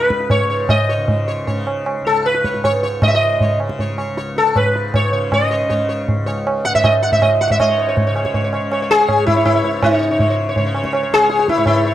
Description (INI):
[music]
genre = indian classical, Hindustani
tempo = 158 BPM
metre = 3/4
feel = straight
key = unclear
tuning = A4 = 438 Hz
[part]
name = sitar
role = melody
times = 0.0-11.9 s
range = D#4 to F#5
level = -16 LUFS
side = equal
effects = slapback echo
[part]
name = tanpura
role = drone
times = 0.0-11.9 s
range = C#2 to C#3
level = -26 LUFS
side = left 2 dB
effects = none
[part]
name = tabla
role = percussion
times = 0.0-11.8 s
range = none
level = -19 LUFS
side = right 1 dB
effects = none
[sound]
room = small room reverb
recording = dry, close 1970s-style studio recording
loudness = -14 LUFS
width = side -12 dB against mid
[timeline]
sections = 0.0-7.6 A section; 7.6-11.9 B section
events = speeding up 0.0-11.9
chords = none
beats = 0.30 | 0.69 1.08 1.47 | 1.86 2.25 2.64 | 3.02 3.41 3.79 | 4.18 4.56 4.94 | 5.32 5.70 6.08 | 6.46 6.84 7.22 | 7.59 7.97 8.34 | 8.72 9.09 9.46 | 9.83 10.20 10.57 | 10.94 11.30 11.67